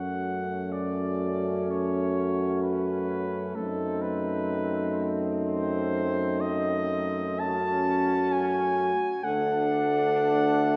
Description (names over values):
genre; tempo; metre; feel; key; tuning
classical, hymn-like piece for brass band; 58-66 BPM; 4/4; rubato; unclear; A4 = 440 Hz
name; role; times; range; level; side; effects
warm flugelhorn; melody; 0.0-10.8 s; A4 to A5; -33 LUFS; equal; none
mellow French horn section; second line; 0.0-10.8 s; D#4 to A4; -33 LUFS; equal; none
brilliant trombone section; accompaniment; 0.0-10.8 s; C4 to D4; -36 LUFS; equal; none
mellow euphonium; accompaniment; 0.0-10.8 s; A3; -36 LUFS; equal; none
warm tuba; bass; 0.0-10.8 s; D2 to F#2; -34 LUFS; equal; none
room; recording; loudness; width
wet recital hall reverb, RT60 1.6 s; recorded in a church or concert hall; -27 LUFS; mono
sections
0.0-10.8 A section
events
none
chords
0.0 F#m; 3.6 F#dim7; 7.4 F#m; 9.2 D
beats
0.74 1.71 2.64 | 3.57 4.52 5.48 6.42 | 7.41 8.33 9.23 10.16